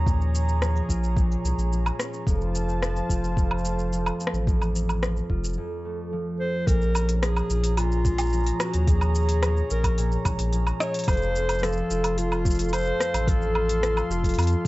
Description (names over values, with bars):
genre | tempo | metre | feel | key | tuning
folktronica | 109 BPM | 4/4 | straight | Bb minor | A4 = 437 Hz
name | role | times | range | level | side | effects
warm analog pad | sustained chords | 0.0-14.7 s | F4 to C6 | -34 LUFS | right 1 dB | chorus
concert harp | arpeggios | 0.0-14.7 s | F2 to F4 | -30 LUFS | equal | none
round analog bass | bass | 0.0-14.6 s | F1 to F2 | -25 LUFS | equal | none
electronic kick drum | drums | 0.1-14.7 s | none | -24 LUFS | equal | overdrive
organic electronic drum kit | drums | 0.1-14.6 s | hi-hat, rim click, shaker, woodblock | -30 LUFS | equal | overdrive
dark clarinet | melody | 6.4-14.7 s | F4 to Db5 | -28 LUFS | left 1 dB | vintage 12-bit sampler grit
room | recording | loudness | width
little or no reverb | nothing above 7.9 kHz | -22 LUFS | side -19 dB against mid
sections
0.0-6.7 A section; 6.7-14.7 B section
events
break 5.6-6.7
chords
0.0 Bbm7; 2.3 F; 6.7 Bbm7; 11.1 F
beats
| 0.07 0.62 1.17 1.72 | 2.27 2.82 3.37 3.92 | 4.47 5.02 5.57 6.12 | 6.67 7.22 7.78 8.33 | 8.88 9.43 9.98 10.53 | 11.08 11.63 12.18 12.73 | 13.28 13.83 14.38